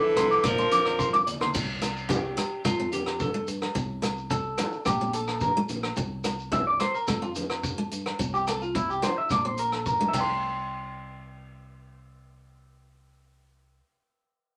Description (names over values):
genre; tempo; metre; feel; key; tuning
highlife guitar band; 108 BPM; 4/4; straight; C mixolydian; A4 = 440 Hz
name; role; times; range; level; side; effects
clear alto saxophone; melody; 0.0-1.2 s; A4 to Bb4; -27 LUFS; equal; none
raspy tenor saxophone; second line; 0.0-1.2 s; E3 to F3; -34 LUFS; equal; none
picked steel-string acoustic guitar; accompaniment; 0.0-10.5 s; A3 to D4; -36 LUFS; equal; none
clean electric guitar; arpeggios; 0.0-13.9 s; E4 to D6; -29 LUFS; equal; none
fingered electric bass; bass; 0.2-13.8 s; Bb1 to G2; -40 LUFS; equal; none
vintage drum kit; drums; 0.2-10.3 s; crash cymbal, hi-hat, kick drum, rim click; -36 LUFS; equal; none
agogo bells; percussion; 0.2-10.5 s; none; -41 LUFS; equal; none
congas; percussion; 0.2-10.7 s; none; -38 LUFS; equal; none
shekere; percussion; 0.2-10.7 s; none; -41 LUFS; equal; none
room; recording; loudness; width
wet small room ambience, RT60 0.5 s; none; -27 LUFS; mono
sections
0.0-1.5 A section; 1.5-10.4 B section; 10.4-12.6 C section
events
drum fill 1.1-1.5, 9.9-10.4; clean electric guitar solo 1.5-10.4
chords
0.4 Bbadd9; 1.5 C5; 2.6 F; 3.7 Am/C; 4.9 Bbsus2; 6.0 C7; 7.1 F; 8.2 C7; 9.3 Bbsus2; 10.1 C5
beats
0.43 0.98 | 1.54 2.09 2.64 3.19 | 3.75 4.30 4.86 5.41 | 5.97 6.52 7.08 7.63 | 8.19 8.74 9.30 9.86 | 10.42 10.97 11.53 12.09